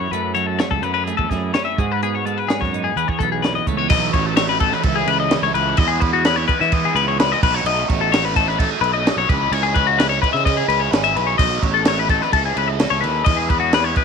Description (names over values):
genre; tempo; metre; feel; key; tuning
math rock and midwest emo; 128 BPM; 4/4; straight; E major; A4 = 436 Hz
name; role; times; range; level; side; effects
twelve-string electric guitar; accompaniment; 0.0-5.8 s; E2 to G#4; -26 LUFS; right 15 dB; vibrato effect
twelve-string electric guitar; arpeggios; 0.0-14.0 s; F#4 to E5; -19 LUFS; left 13 dB; none
fuzz fingered electric bass; bass; 0.0-13.9 s; G#1 to E3; -25 LUFS; right 2 dB; overdrive
compact cocktail drum kit; drums; 0.1-14.0 s; crash cymbal, hi-hat, kick drum, snare drum; -21 LUFS; right 2 dB; none
raw garage guitar; riff; 3.9-14.0 s; B2 to A4; -24 LUFS; right 18 dB; overdrive, phaser
room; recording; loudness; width
little or no reverb; 1960s-style stereo with parts hard left and right; -16 LUFS; side -6 dB against mid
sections
0.0-3.9 A section; 3.9-14.0 B section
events
none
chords
0.0 F#m7; 1.8 G#m7; 3.0 Emaj7; 3.9 B9sus4; 4.8 Amaj9/C#; 5.8 Emaj7; 7.4 Bsus2; 9.3 C#m7; 11.4 Bsus2; 12.3 Amaj9/C#; 13.3 Emaj9